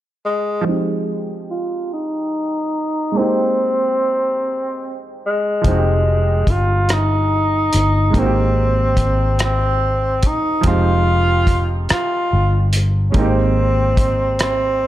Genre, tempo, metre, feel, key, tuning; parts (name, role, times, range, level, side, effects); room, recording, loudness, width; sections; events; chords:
slow six-eight R&B; 48 BPM (dotted quarters); 6/8; straight; F minor; A4 = 440 Hz
breathy tenor saxophone; melody; 0.3-14.9 s; Ab3 to F4; -19 LUFS; equal; low-pass filter, slapback echo
clear baby grand piano; accompaniment; 0.6-14.9 s; F3 to G4; -23 LUFS; right 3 dB; low-pass filter
cloth-damped thuddy drum kit; drums; 5.6-14.6 s; hi-hat, kick drum, rim click; -19 LUFS; equal
vintage muted fingered electric bass; bass; 5.7-14.9 s; E1 to Ab1; -17 LUFS; equal
light reverb, small room ambience; dark, warm production; -15 LUFS; side -13 dB against mid
0.7-10.7 A section; 10.7-14.9 B section
filter sweep 0.7-10.7
0.0 N.C.; 0.7 Fm9; 3.2 Abmaj9; 5.7 Fm9; 8.2 Abmaj9; 10.7 Fm9; 13.2 Abmaj9